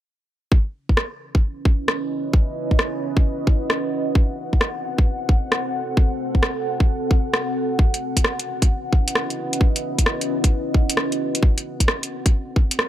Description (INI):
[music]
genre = UK garage, two-step garage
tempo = 132 BPM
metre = 4/4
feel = swing 66% on 16ths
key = C# minor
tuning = A4 = 440 Hz
[part]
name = electronic kick drum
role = drums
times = 0.5-12.7 s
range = none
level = -17 LUFS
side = equal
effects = none
[part]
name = deep dark ambient pad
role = texture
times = 1.6-12.9 s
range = C4 to F#5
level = -26 LUFS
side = right 1 dB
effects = chorus, built-in reverb, sidechain pumping
[part]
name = garage drum kit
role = drums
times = 1.0-12.9 s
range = hi-hat, rim click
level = -21 LUFS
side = equal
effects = none
[sound]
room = little or no reverb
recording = none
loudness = -18 LUFS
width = side -12 dB against mid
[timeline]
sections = 0.5-12.9 A section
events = none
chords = 0.5 C#m11; 3.9 F#dim/C; 7.8 C#m11; 11.2 F#dim/C